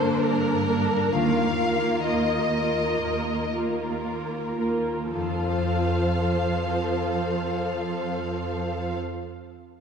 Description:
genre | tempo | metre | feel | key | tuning
cinematic, emotional film score for orchestra | 53-71 BPM | 4/4 | rubato | F major | A4 = 440 Hz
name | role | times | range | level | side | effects
rich studio violin section | melody | 0.0-8.9 s | Bb4 to F5 | -29 LUFS | left 3 dB | none
warm symphonic violin section | second line | 0.0-8.9 s | A4 to C5 | -30 LUFS | equal | none
warm symphonic viola section | accompaniment | 0.0-8.9 s | F3 to F4 | -29 LUFS | right 2 dB | none
concert harp | arpeggios | 0.0-9.2 s | F2 to A5 | -32 LUFS | left 6 dB | none
warm symphonic cello section | bass | 0.0-8.9 s | Eb2 to G2 | -29 LUFS | right 3 dB | none
room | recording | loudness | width
wet scoring stage reverb, RT60 2.1 s | heard from further back in the room | -23 LUFS | side -6 dB against mid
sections
0.0-5.1 A section; 5.1-9.6 B section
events
slowing down 0.0-5.1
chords
0.0 Gmadd9; 1.1 Ebsus2; 5.1 F

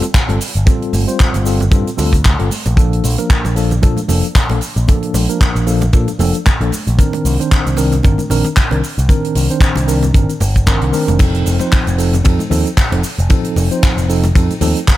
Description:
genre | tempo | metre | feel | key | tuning
nu-disco, nu disco | 114 BPM | 4/4 | swing 56% on 16ths | C dorian | A4 = 440 Hz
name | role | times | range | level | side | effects
mellow tine electric piano | accompaniment | 0.0-14.8 s | Eb3 to C5 | -18 LUFS | equal | medium stereo tremolo, tape echo
tight funk drum kit | drums | 0.0-15.0 s | cabasa, crash cymbal, handclaps, hi-hat, ride cymbal | -22 LUFS | equal | none
congas | percussion | 0.0-15.0 s | none | -26 LUFS | right 3 dB | none
kick drum | drums | 0.1-15.0 s | none | -13 LUFS | equal | none
picked electric bass with an envelope filter | bass | 0.3-14.7 s | F1 to Bb2 | -16 LUFS | equal | tube saturation
room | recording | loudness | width
small room ambience | none | -12 LUFS | side -15 dB against mid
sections
0.0-15.0 A section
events
none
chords
0.0 G9sus4; 2.8 Bbmaj7; 7.0 Cm9; 11.2 F7

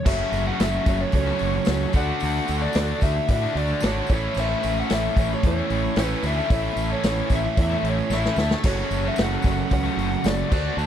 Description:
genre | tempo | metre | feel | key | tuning
classic rock | 112 BPM | 4/4 | straight | unclear | A4 = 440 Hz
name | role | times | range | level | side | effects
lead guitar through a small cranked amp | melody | 0.0-10.9 s | C#5 to A5 | -28 LUFS | left 3 dB | overdrive
warm upright piano | accompaniment | 0.0-10.9 s | E4 to E5 | -35 LUFS | right 7 dB | none
cranked stack guitar | riff | 0.0-10.9 s | F#2 to F#4 | -31 LUFS | left 14 dB | overdrive
distorted electric guitar | riff | 0.0-10.9 s | F#2 to F#4 | -29 LUFS | right 14 dB | distortion
tight distorted guitar | riff | 0.1-10.9 s | A2 to F#4 | -32 LUFS | right 1 dB | distortion
fuzz fingered electric bass | bass | 0.1-10.9 s | F#1 to A2 | -26 LUFS | equal | overdrive
vintage drum kit | drums | 0.1-10.6 s | crash cymbal, hi-hat, kick drum, snare drum | -24 LUFS | equal | none
tambourine | percussion | 0.1-10.9 s | none | -46 LUFS | right 5 dB | none
room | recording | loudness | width
little or no reverb | dry, close 1970s-style studio recording, faint mains hum | -20 LUFS | side -10 dB against mid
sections
0.1-10.9 A section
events
drum fill 8.1-8.6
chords
0.1 F#m; 1.9 D; 4.1 A; 8.6 F#m

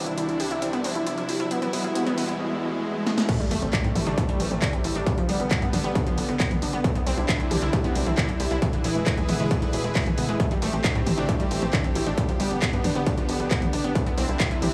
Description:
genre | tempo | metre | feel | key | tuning
uplifting trance | 135 BPM | 4/4 | straight | A minor | A4 = 440 Hz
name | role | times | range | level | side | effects
supersaw pad | sustained chords | 0.0-14.7 s | C2 to B4 | -32 LUFS | equal | sidechain pumping
unison pluck | arpeggios | 0.0-14.7 s | B2 to G4 | -32 LUFS | equal | sidechain pumping, tape echo
riser and sub drop | sound effects | 0.0-5.1 s | none | -36 LUFS | equal | none
punchy analog drum machine | drums | 0.1-14.7 s | crash cymbal, handclaps, hi-hat, snare drum, toms | -32 LUFS | equal | sidechain pumping on hats, sidechain pumping on cymbals, sidechain pumping on toms
electronic kick drum | drums | 3.3-14.5 s | none | -27 LUFS | equal | distortion, overdrive
tight sequencer bass | bass | 3.4-14.7 s | E1 to A2 | -31 LUFS | equal | tube saturation, sidechain pumping
room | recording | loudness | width
light reverb, digital ambience | studio reverb | -25 LUFS | mono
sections
0.0-3.3 A section; 3.3-14.7 B section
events
build-up 0.0-3.3; riser 0.0-3.3; drum fill 3.1; drop 3.3-14.7; impact 3.3-5.1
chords
0.0 Cadd9; 1.5 E; 3.3 Am7; 5.1 G; 6.8 Cadd9; 8.6 E; 10.4 Am7; 12.2 G; 14.0 Cadd9

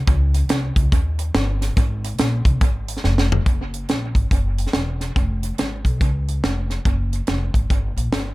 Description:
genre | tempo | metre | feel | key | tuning
uptempo gospel | 142 BPM | 4/4 | swing 62% on 8ths | unclear | A4 = 440 Hz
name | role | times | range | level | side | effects
upright bass | bass | 0.1-8.3 s | Fb1 to Eb2 | -21 LUFS | equal | none
tight funk drum kit | drums | 0.1-8.3 s | hi-hat, kick drum, snare drum, toms | -20 LUFS | equal | dub echo
room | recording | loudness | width
little or no reverb | echo-heavy mix | -18 LUFS | side -20 dB against mid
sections
0.0-3.5 A section; 3.5-8.3 B section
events
drum fill 3.0-3.5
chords
none

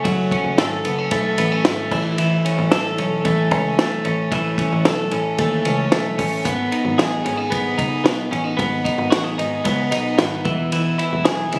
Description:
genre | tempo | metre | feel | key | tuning
jangly indie pop | 112 BPM | 4/4 | straight | unclear | A4 = 438 Hz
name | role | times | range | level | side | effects
twelve-string electric guitar | arpeggios | 0.0-11.6 s | E3 to A4 | -22 LUFS | equal | spring reverb
picked electric bass | bass | 0.1-11.6 s | E1 to D#2 | -28 LUFS | equal | none
compact cocktail drum kit | drums | 0.1-11.6 s | crash cymbal, hi-hat, kick drum, ride cymbal, snare drum | -26 LUFS | equal | none
room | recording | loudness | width
light reverb, studio reverb | recorded on a phone in the room, studio ambience, compression | -20 LUFS | mono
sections
0.0-11.6 A section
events
none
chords
0.0 F#m; 1.9 A; 6.5 G#m; 10.5 E

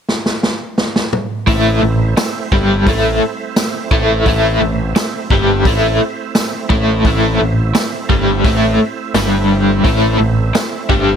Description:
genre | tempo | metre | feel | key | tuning
psychedelic rock | 86 BPM | 4/4 | straight | A minor | A4 = 440 Hz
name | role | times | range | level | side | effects
vintage drum kit | drums | 0.1-11.1 s | hi-hat, kick drum, snare drum, toms | -17 LUFS | equal | none
bright tonewheel organ | sustained chords | 1.5-11.2 s | A3 to E5 | -24 LUFS | right 5 dB | overdrive, chorus vibrato, slow rotary speaker
overdriven electric guitar | riff | 1.5-11.2 s | G2 to A3 | -14 LUFS | left 1 dB | tremolo
growling picked electric bass | bass | 1.5-11.2 s | G1 to A1 | -18 LUFS | equal | overdrive
tambourine | percussion | 2.2-10.7 s | none | -30 LUFS | left 5 dB | none
room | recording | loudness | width
light reverb, small room ambience | none | -12 LUFS | side -8 dB against mid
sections
0.0-1.5 A section; 1.5-11.2 B section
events
drum fill 0.1-1.5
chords
0.0 N.C.; 1.5 Am

